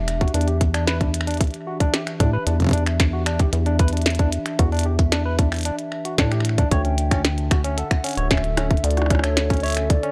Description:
IDM; 113 BPM; 4/4; straight; E dorian; A4 = 440 Hz
warbly tape-like pad; sustained chords; 0.0-10.1 s; D3 to E5; -33 LUFS; equal; chorus, built-in reverb, vintage 12-bit sampler grit
deep acid bass; bass; 0.0-10.0 s; D1 to A2; -24 LUFS; equal; tube saturation
glitchy drum kit; drums; 0.1-10.1 s; finger snaps, hi-hat, percussion blips, snare drum; -28 LUFS; equal
barky tine electric piano; arpeggios; 0.2-10.1 s; C#4 to C#5; -31 LUFS; equal; overdrive, vintage 12-bit sampler grit, low-pass filter, analog delay
electronic kick drum; drums; 0.2-10.0 s; -21 LUFS; equal
warbly nostalgic lead; melody; 6.7-10.1 s; C#5 to G5; -31 LUFS; equal; chorus
digital ambience; dry, gritty hardware recording; -21 LUFS; mono
0.0-10.1 A section
0.0 Em7; 6.7 Dmaj7
| 0.34 0.87 1.41 1.94 | 2.47 3.00 3.53 4.06 | 4.59 5.12 5.65 6.18 | 6.71 7.25 7.78 8.31 | 8.84 9.37 9.90

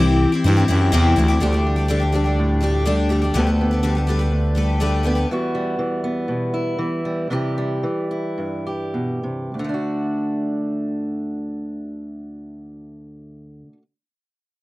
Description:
indie folk with a building arrangement; 98-125 BPM; 4/4; straight; D mixolydian; A4 = 440 Hz
picked twelve-string acoustic guitar; accompaniment; 0.0-5.3 s; C3 to B4; -21 LUFS; left 2 dB
growling FM bass; bass; 0.0-5.3 s; C2 to G2; -18 LUFS; equal
fingerpicked acoustic archtop guitar; accompaniment; 1.4-13.8 s; D2 to A4; -23 LUFS; equal
little or no reverb; dry, close 1970s-style studio recording; -18 LUFS; side -19 dB against mid
0.0-1.4 A section; 1.4-9.5 B section; 9.5-14.4 C section
slowing down 5.3-9.5
0.0 C; 1.4 Dsus4; 3.4 Gadd9/D; 5.3 Emadd9; 7.3 C; 9.5 D
0.45 0.94 | 1.42 1.90 2.38 2.87 | 3.35 3.84 4.32 4.81 | 5.30 5.78 6.28 6.78 | 7.30 7.83 8.38 8.95 | 9.54 10.16 10.77 11.38 | 11.99 12.61 13.22

